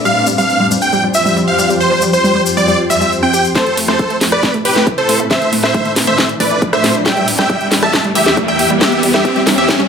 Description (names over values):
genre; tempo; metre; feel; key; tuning
uplifting trance; 137 BPM; 4/4; straight; A minor; A4 = 439 Hz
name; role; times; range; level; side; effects
shimmering ambient pad; sustained chords; 0.0-9.9 s; E2 to C5; -19 LUFS; left 1 dB; chorus, built-in reverb, sidechain pumping
big supersaw lead; melody; 0.1-9.8 s; G4 to A5; -14 LUFS; equal; sidechain pumping, digital delay
wide unison pluck; arpeggios; 0.1-9.8 s; G3 to G4; -20 LUFS; right 1 dB; sidechain pumping, digital delay
tube shaker; percussion; 0.1-3.5 s; none; -22 LUFS; left 4 dB; none
wide unison pluck; second line; 3.6-9.8 s; B4 to A5; -22 LUFS; equal; sidechain pumping, digital delay
electronic kick drum; drums; 3.6-9.8 s; none; -19 LUFS; left 1 dB; high-pass filter on kick
house drum kit; drums; 3.6-9.9 s; hi-hat, rim click, snare drum; -16 LUFS; equal; sidechain pumping on hats
riser; sound effects; 5.0-9.9 s; none; -20 LUFS; equal; none
room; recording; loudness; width
moderate digital room reverb, RT60 0.9 s; high-pass filter; -11 LUFS; side -7 dB against mid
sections
0.0-3.6 A section; 3.6-9.9 B section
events
filter sweep on synth arpeggio sound 0.0-3.6; build-up 3.6-9.9; drum fill 3.6-9.9; riser 5.0-9.9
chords
0.1 Fsus2; 3.6 Amadd9; 7.1 Em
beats
| 0.05 0.49 0.93 1.37 | 1.80 2.24 2.68 3.12 | 3.56 3.99 4.43 4.87 | 5.31 5.75 6.18 6.62 | 7.06 7.50 7.94 8.37 | 8.81 9.25 9.69